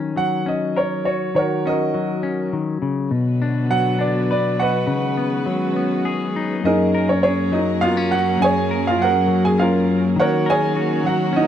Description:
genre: acoustic folk-pop ballad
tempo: 102 BPM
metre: 3/4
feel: straight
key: F# major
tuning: A4 = 440 Hz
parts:
  - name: semi-hollow electric guitar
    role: accompaniment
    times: 0.0-11.5 s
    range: F#2 to B4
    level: -21 LUFS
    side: left 4 dB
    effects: none
  - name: clear upright piano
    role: melody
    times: 0.2-11.5 s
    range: C#4 to G#5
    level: -20 LUFS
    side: right 2 dB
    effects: none
  - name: warm chamber string section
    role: sustained chords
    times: 3.1-11.5 s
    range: D3 to B4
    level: -25 LUFS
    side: right 2 dB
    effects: none
room: small room ambience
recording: dry, close 1970s-style studio recording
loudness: -17 LUFS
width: side -10 dB against mid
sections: 0.0-6.6 A section; 6.6-11.5 B section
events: none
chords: 0.0 D#m7; 3.1 Bm; 4.9 C#9sus4; 6.6 F#add9; 10.2 D#m7

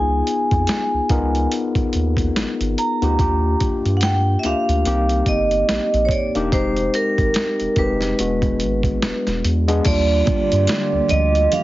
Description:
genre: R&B, neo-soul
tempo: 72 BPM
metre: 4/4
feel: swing 58% on 16ths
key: Eb major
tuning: A4 = 437 Hz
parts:
  - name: vibraphone with medium hard mallets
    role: melody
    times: 0.0-11.6 s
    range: Bb4 to Bb5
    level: -21 LUFS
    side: right 2 dB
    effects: slapback echo
  - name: overdriven tine electric piano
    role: accompaniment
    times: 0.0-11.6 s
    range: G3 to Bb4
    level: -22 LUFS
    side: left 3 dB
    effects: none
  - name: round analog bass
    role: bass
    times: 0.0-11.5 s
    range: Fb1 to G2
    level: -21 LUFS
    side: equal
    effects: none
  - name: boom bap sampler-style drum kit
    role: drums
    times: 0.3-11.6 s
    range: crash cymbal, hi-hat, kick drum, snare drum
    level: -23 LUFS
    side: equal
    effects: none
  - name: hollow soft pad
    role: sustained chords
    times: 9.8-11.6 s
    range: D3 to G4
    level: -28 LUFS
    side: right 2 dB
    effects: chorus
  - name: congas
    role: percussion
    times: 10.3-11.6 s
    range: none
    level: -29 LUFS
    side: right 7 dB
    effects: none
room: light reverb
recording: heavily compressed radio sound, multiband compression, nothing above 7.5 kHz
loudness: -16 LUFS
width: side -16 dB against mid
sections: 0.0-9.9 A section; 9.9-11.6 B section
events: none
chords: 0.0 Db9; 3.2 Ebmaj9; 4.9 Cm7; 6.5 Fm9; 8.2 E9; 9.9 Ebmaj9

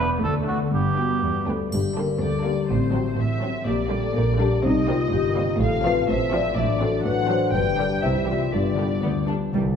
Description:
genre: cinematic, playful, whimsical film cue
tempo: 123 BPM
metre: 2/4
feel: straight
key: G minor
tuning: A4 = 439 Hz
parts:
  - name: muted studio violin section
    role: melody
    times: 0.0-9.3 s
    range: C5 to G5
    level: -29 LUFS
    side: left 2 dB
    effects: none
  - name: muted studio violin section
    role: second line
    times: 0.0-9.4 s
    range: A3 to D5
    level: -36 LUFS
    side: left 2 dB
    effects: none
  - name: warm cor anglais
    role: second line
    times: 0.0-1.5 s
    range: F#4 to B4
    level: -27 LUFS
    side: right 4 dB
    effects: none
  - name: muted studio viola section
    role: accompaniment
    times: 0.0-9.5 s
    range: D3 to B3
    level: -32 LUFS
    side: right 2 dB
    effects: none
  - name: concert harp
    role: arpeggios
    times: 0.0-9.8 s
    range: G2 to D5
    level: -29 LUFS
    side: left 5 dB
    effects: none
  - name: muted studio cello section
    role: bass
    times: 0.0-9.6 s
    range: D2 to G3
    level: -28 LUFS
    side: right 2 dB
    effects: none
  - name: muted studio double bass section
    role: bass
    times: 0.0-9.8 s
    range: E1 to D2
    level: -28 LUFS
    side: right 3 dB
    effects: none
  - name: marimba with medium mallets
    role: melody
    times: 1.0-9.0 s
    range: C4 to E5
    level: -26 LUFS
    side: left 5 dB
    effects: none
  - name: triangle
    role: percussion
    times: 1.7-2.7 s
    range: none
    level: -40 LUFS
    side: right 1 dB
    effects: none
  - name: dark French horn section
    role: sustained chords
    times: 2.0-9.6 s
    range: E3 to E4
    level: -30 LUFS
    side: left 3 dB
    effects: none
  - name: mellow tuba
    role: bass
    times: 9.5-9.8 s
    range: C2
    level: -26 LUFS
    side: right 4 dB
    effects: none
room: wet scoring stage reverb, RT60 1.8 s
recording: minimal, uncompressed stereo recording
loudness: -20 LUFS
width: side -7 dB against mid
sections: 0.0-1.7 A section; 1.7-9.5 B section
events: none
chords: 0.2 D; 0.7 G; 1.7 Gm; 2.7 F#dim/A; 3.7 Gm/Bb; 4.6 Cm7; 5.6 F/A; 6.6 D7/A; 7.5 G; 8.0 C; 8.5 G

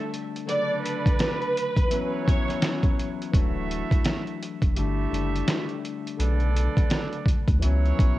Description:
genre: hip hop, boom-bap hip-hop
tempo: 84 BPM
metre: 4/4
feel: swing 61% on 16ths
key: B minor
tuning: A4 = 439 Hz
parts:
  - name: mellow tine electric piano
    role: accompaniment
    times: 0.0-8.2 s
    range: C#3 to D4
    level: -32 LUFS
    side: left 8 dB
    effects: medium stereo tremolo, high-pass filter, low-pass filter, cassette tape
  - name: clear horn section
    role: stabs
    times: 0.0-8.2 s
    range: F#3 to E5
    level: -33 LUFS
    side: right 7 dB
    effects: high-pass filter, low-pass filter, cassette tape, analog delay
  - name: trip hop sampler-style drum kit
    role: drums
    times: 0.1-8.2 s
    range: hi-hat, kick drum, snare drum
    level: -23 LUFS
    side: equal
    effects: overdrive, cassette tape
  - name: warm studio violin section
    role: melody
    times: 0.5-2.6 s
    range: B4 to D5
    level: -28 LUFS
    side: right 2 dB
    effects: high-pass filter, low-pass filter, analog delay
  - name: warm sub bass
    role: bass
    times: 3.3-8.2 s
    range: D1 to D2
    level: -24 LUFS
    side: equal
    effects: tube saturation
room: digital ambience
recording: home recording on cassette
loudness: -22 LUFS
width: side -16 dB against mid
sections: 0.0-8.2 A section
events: break 0.0-3.3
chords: 0.5 Bm7; 1.9 F#7sus4; 3.3 Dadd9; 4.8 Gsus2; 6.2 Bm7; 7.6 F#7sus4

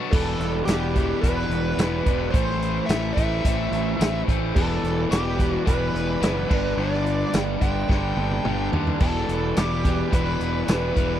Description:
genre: classic rock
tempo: 108 BPM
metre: 4/4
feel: straight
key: E minor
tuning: A4 = 440 Hz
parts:
  - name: crunchy overdriven guitar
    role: riff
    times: 0.0-11.2 s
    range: E2 to D4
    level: -28 LUFS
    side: left 12 dB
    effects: none
  - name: raw garage guitar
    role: riff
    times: 0.0-11.2 s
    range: G2 to E4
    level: -29 LUFS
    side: right 11 dB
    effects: overdrive
  - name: dark smooth lead guitar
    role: melody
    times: 0.1-11.2 s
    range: G4 to G5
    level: -28 LUFS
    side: equal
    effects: wah, overdrive
  - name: fuzz fingered electric bass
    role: bass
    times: 0.1-11.2 s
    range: E1 to D#2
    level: -27 LUFS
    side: equal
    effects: overdrive
  - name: vintage drum kit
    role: drums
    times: 0.1-11.1 s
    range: crash cymbal, hi-hat, kick drum, snare drum, tambourine, toms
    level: -24 LUFS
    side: equal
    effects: none
room: studio ambience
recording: dry, close 1970s-style studio recording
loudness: -20 LUFS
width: side -11 dB against mid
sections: 0.1-11.2 A section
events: drum fill 7.9-9.0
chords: 0.1 Em; 2.3 Am; 4.6 Em; 6.5 G; 9.0 Em

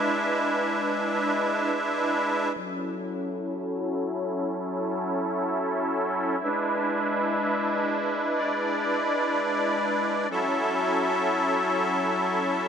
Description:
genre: hip hop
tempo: free time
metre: none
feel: none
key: F# minor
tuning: A4 = 439 Hz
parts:
  - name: musette accordion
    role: solo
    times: 0.0-12.7 s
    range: F#3 to E5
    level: -24 LUFS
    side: equal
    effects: low-pass filter
room: moderate lush hall reverb, RT60 2.7 s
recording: none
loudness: -24 LUFS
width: side -7 dB against mid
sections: 0.0-2.6 A section; 2.6-10.3 B section; 10.3-12.7 C section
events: filter sweep on accordion 2.6-10.3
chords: 0.0 E7; 2.6 F#m7; 6.4 E7; 10.3 F#m7

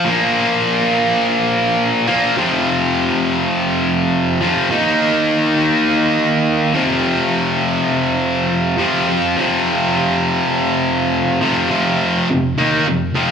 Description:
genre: rock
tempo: 103 BPM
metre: 4/4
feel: straight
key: unclear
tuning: A4 = 440 Hz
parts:
  - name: overdriven electric guitar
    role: solo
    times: 0.0-13.3 s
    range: F2 to Eb4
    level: -14 LUFS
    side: equal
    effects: slapback echo
room: moderate club reverb, RT60 0.7 s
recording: live gig heard through the venue's PA, club reverb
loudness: -14 LUFS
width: side -7 dB against mid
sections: 0.0-11.7 A section; 11.7-13.3 B section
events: none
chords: 0.0 Bb5; 2.4 F5; 4.7 Eb5; 6.8 F5

